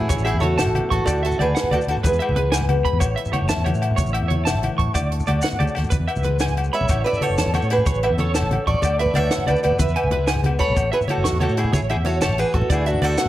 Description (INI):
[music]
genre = highlife guitar band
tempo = 124 BPM (dotted quarters)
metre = 12/8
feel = straight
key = A major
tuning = A4 = 440 Hz
[part]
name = fingerpicked steel-string acoustic guitar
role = melody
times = 0.0-2.5, 6.7-13.3 s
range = D4 to E5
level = -23 LUFS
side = right 2 dB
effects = analog delay
[part]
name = picked steel-string acoustic guitar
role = accompaniment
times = 0.0-13.3 s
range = A2 to C#5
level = -30 LUFS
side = left 5 dB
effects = none
[part]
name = fingered electric bass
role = bass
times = 0.0-13.2 s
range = F#1 to A2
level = -23 LUFS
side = equal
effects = none
[part]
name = congas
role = percussion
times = 0.0-13.3 s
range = none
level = -27 LUFS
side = equal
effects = none
[part]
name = electric guitar at the edge of break-up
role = arpeggios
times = 0.1-13.3 s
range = B4 to C#6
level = -27 LUFS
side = right 4 dB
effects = tremolo, analog delay
[part]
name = compact cocktail drum kit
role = drums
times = 0.1-13.3 s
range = hi-hat, kick drum, snare drum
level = -25 LUFS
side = equal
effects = none
[part]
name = maracas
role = percussion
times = 0.1-13.3 s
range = none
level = -34 LUFS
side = left 5 dB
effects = none
[part]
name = agogo bells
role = percussion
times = 0.3-13.2 s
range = none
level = -30 LUFS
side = left 5 dB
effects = none
[sound]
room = light reverb, small room ambience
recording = none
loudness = -18 LUFS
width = side -14 dB against mid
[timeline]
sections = 0.0-13.3 A section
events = none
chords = 0.0 A; 1.1 Dadd9; 2.0 E; 3.0 A; 5.0 Dadd9; 5.9 E; 6.9 A; 8.8 Dadd9; 9.8 E; 10.8 A; 12.7 Dadd9